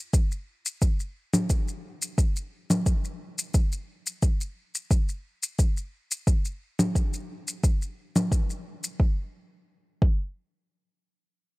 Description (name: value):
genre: organic downtempo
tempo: 88 BPM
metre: 4/4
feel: straight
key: none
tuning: none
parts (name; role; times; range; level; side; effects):
- electronic kick drum; drums; 0.1-10.2 s; none; -23 LUFS; equal; none
- shaker and congas; drums; 0.1-9.0 s; none; -27 LUFS; left 1 dB; none
room: digital ambience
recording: dark, warm production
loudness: -25 LUFS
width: side -23 dB against mid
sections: 0.0-9.0 A section; 9.0-11.6 B section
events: none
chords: none